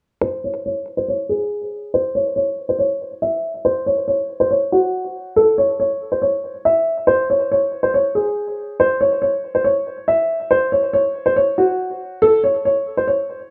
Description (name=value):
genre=hip hop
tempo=140 BPM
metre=4/4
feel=half-time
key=C# harmonic minor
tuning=A4 = 440 Hz
part: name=dark upright piano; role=melody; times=0.2-13.5 s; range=F#4 to E5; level=-19 LUFS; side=equal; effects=low-pass filter, digital delay
room=wet studio reverb, RT60 0.5 s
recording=rough home demo mix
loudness=-19 LUFS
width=mono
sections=0.2-13.5 A section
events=filter sweep on upright piano 0.2-13.5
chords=none